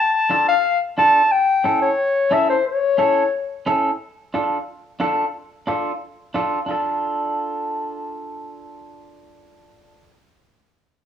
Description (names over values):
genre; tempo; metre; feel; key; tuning
latin; 178 BPM; 4/4; straight; unclear; A4 = 440 Hz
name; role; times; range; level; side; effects
warm clarinet; melody; 0.0-3.6 s; C5 to A5; -16 LUFS; left 3 dB; cassette tape
clean electric guitar; accompaniment; 0.3-10.2 s; C#4 to A4; -22 LUFS; right 2 dB; cassette tape
room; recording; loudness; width
wet spring reverb, RT60 1.1 s, small room ambience; home recording on cassette; -18 LUFS; side -9 dB against mid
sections
0.0-4.0 A section; 4.0-6.7 B section; 6.7-9.4 C section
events
none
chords
0.0 Dm; 1.3 A; 4.0 Dm